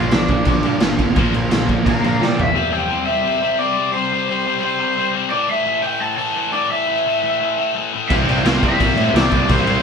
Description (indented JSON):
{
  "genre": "punk rock",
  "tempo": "173 BPM",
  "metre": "4/4",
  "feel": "straight",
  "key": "C major",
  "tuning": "A4 = 439 Hz",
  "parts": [
    { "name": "raw garage guitar", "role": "melody", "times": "0.0-9.8 s", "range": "D4 to Bb5", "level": "-20 LUFS", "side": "equal", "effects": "overdrive" },
    { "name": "biting overdriven guitar", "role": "riff", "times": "0.0-2.5, 8.1-9.8 s", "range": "Bb2 to E4", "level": "-25 LUFS", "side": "right 6 dB", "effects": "none" },
    { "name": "distorted electric guitar", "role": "riff", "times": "0.0-9.8 s", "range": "A2 to C4", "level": "-21 LUFS", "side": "left 6 dB", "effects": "distortion" },
    { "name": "distorted electric guitar", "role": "riff", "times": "0.0-2.6, 8.1-9.8 s", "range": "Bb2 to C4", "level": "-24 LUFS", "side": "right 1 dB", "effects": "distortion" },
    { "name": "fuzz picked electric bass", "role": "bass", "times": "0.0-2.5, 8.1-9.8 s", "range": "G1 to C3", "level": "-22 LUFS", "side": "right 1 dB", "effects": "overdrive" },
    { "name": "raw garage drum kit", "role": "drums", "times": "0.1-2.5, 8.1-9.8 s", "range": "crash cymbal, kick drum, snare drum, toms", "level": "-19 LUFS", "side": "equal", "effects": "none" }
  ],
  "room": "moderate stone room reverb, RT60 1.2 s",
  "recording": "band playing live in one room",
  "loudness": "-15 LUFS",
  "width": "side -6 dB against mid",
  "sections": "0.0-2.6 A section; 2.6-9.8 B section",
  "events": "overdriven electric guitar solo 0.0-2.6; drum fill 2.2-2.6",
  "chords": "0.0 Bb; 2.6 C; 5.3 A5; 8.1 C"
}